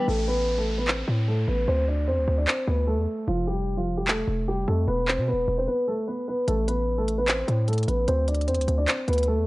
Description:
hip hop, trap; 150 BPM; 4/4; half-time; A minor; A4 = 440 Hz
dark concert grand piano; melody; 0.0-9.5 s; F3 to D5; -26 LUFS; equal; low-pass filter
hard-hitting 808-style bass; bass; 0.1-9.5 s; E1 to B2; -25 LUFS; equal
downlifter; sound effects; 0.1-3.3 s; -39 LUFS; equal
trap drum kit; drums; 0.9-9.3 s; handclaps, hi-hat; -27 LUFS; equal
digital ambience; worn, warbling old tape, cassette tape, warbly pitch drift, nothing above 11.0 kHz; -22 LUFS; side -20 dB against mid
0.1-9.5 A section
break 0.1-6.5
0.1 Am; 1.7 Dsus2; 3.3 F; 4.9 E5; 6.5 Am; 8.1 Dsus2

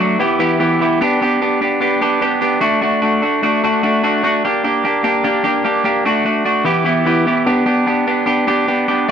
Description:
rock; 148 BPM; 4/4; straight; A4 = 440 Hz
raw garage guitar; solo; 0.0-9.1 s; E3 to G4; -13 LUFS; equal; overdrive
light reverb; dry, close 1970s-style studio recording; -13 LUFS; side -8 dB against mid
0.0-9.1 A section
0.2 Em; 1.0 G; 2.6 D; 4.4 Gm; 6.1 D; 6.7 Em; 7.5 G

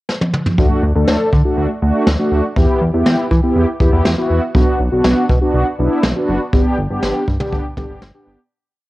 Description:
synth-pop; 121 BPM; 4/4; straight; D major; A4 = 443 Hz
jazz brush drum kit; drums; 0.1-8.1 s; kick drum, snare drum, toms; -17 LUFS; equal; cassette tape
mellow synth brass; accompaniment; 0.6-8.4 s; A3 to A4; -16 LUFS; equal; chorus, cassette tape
chorused synth bass; bass; 0.6-8.4 s; F#1 to E3; -17 LUFS; equal
light reverb, small room ambience; home recording on cassette; -13 LUFS; side -18 dB against mid
0.0-0.6 pickup bar; 0.6-8.5 verse
drum fill 0.1-0.6; fade-out 6.5-8.5
0.0 N.C.; 0.6 D; 2.6 Em; 4.5 Bm; 6.5 G

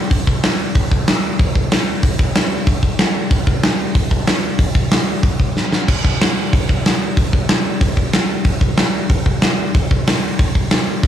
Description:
punk; 187 BPM; 4/4; straight
big rock drum kit; drums; 0.1-11.1 s; crash cymbal, hi-hat, kick drum, snare drum; -14 LUFS; equal
little or no reverb; small room ambience; -14 LUFS; side -10 dB against mid
0.0-11.1 A section
drum fill 5.6-5.9

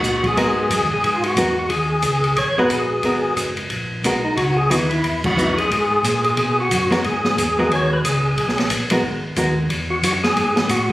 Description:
soul jazz organ trio; 180 BPM; 4/4; swing 61% on 8ths; G# minor; A4 = 440 Hz
percussive tonewheel organ; melody; 0.0-10.9 s; D#4 to C#5; -20 LUFS; equal; slow rotary speaker, overdrive, chorus vibrato
mellow tonewheel organ; bass; 0.0-10.9 s; F#1 to B2; -24 LUFS; equal; overdrive, chorus vibrato, slow rotary speaker
open jazz drum kit; drums; 0.0-10.9 s; crash cymbal, hi-hat, kick drum, ride cymbal, snare drum; -23 LUFS; equal
archtop guitar, miked and amplified; accompaniment; 0.4-9.6 s; E3 to A#4; -20 LUFS; equal
moderate large studio reverb, RT60 0.9 s; recorded on a phone in the room, studio reverb; -16 LUFS; side -16 dB against mid
0.0-10.9 A section
band accent 5.2
0.0 G#m9; 4.4 C#m9; 7.0 G#m9; 9.7 E

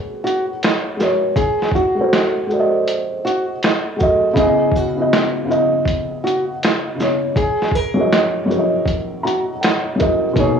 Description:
lo-fi hip hop; 80 BPM; 4/4; swing 62% on 16ths; A4 = 445 Hz
felt-muted upright piano; accompaniment; 0.0-10.6 s; B2 to A#5; -18 LUFS; equal; cassette tape
nylon-string guitar; melody; 0.2-10.6 s; F#4 to A#4; -22 LUFS; right 1 dB; tape echo
lo-fi sampler-style drum kit; drums; 0.3-10.6 s; hi-hat, kick drum, shaker, snare drum; -20 LUFS; right 1 dB; vintage 12-bit sampler grit, cassette tape
moderate spring reverb, RT60 2.3 s; home recording on cassette, studio ambience; -15 LUFS; side -7 dB against mid
0.0-10.6 A section
0.0 G#m9; 1.4 G#7b9; 4.4 C#m9; 7.4 F#13

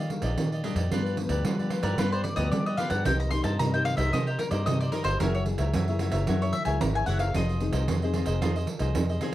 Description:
samba and choro; 112 BPM; 4/4; straight; A4 = 441 Hz
mandolin; melody; 0.0-7.9 s; G4 to C6; -31 LUFS; left 2 dB
cavaquinho; accompaniment; 0.0-9.3 s; D4 to Fb5; -36 LUFS; right 2 dB
nylon-string guitar; accompaniment; 0.0-9.3 s; G2 to Ab4; -33 LUFS; left 4 dB
vintage muted fingered electric bass; bass; 0.0-9.2 s; F1 to G3; -28 LUFS; equal
pandeiro; percussion; 0.1-9.3 s; -31 LUFS; right 4 dB
little or no reverb; dry, close 1970s-style studio recording; -24 LUFS; side -14 dB against mid
0.0-9.3 A section
mandolin solo 0.0-9.3
0.0 Ebmaj7; 0.9 G7; 3.1 Cm7; 5.2 Gb9; 7.4 Fm7

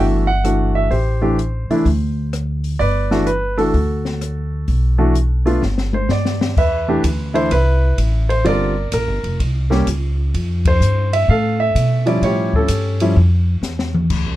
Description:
jazz piano trio; 127 BPM; 4/4; swing 66% on 8ths; G major, C major from 6.6 s; A4 = 440 Hz
warm baby grand piano; melody; 0.0-13.2 s; D3 to F#5; -18 LUFS; right 1 dB
upright bass; bass; 0.0-14.4 s; F1 to B2; -17 LUFS; equal
open jazz drum kit; drums; 0.4-14.2 s; crash cymbal, hi-hat, kick drum, ride cymbal, rim click, snare drum, toms; -23 LUFS; left 2 dB
little or no reverb; dark, warm production; -15 LUFS; side -15 dB against mid
0.0-6.6 A section; 6.6-14.4 B section
drum fill 5.6-6.6, 13.6-14.1; band accent 10.6
0.0 Cadd9(#11) (rootless); 0.9 Am7; 1.9 Csus2/D; 2.8 Gmaj9; 5.6 G5; 6.6 Cmaj7; 8.4 Gm7; 9.4 C5; 10.3 Fmaj7; 12.2 A7b13

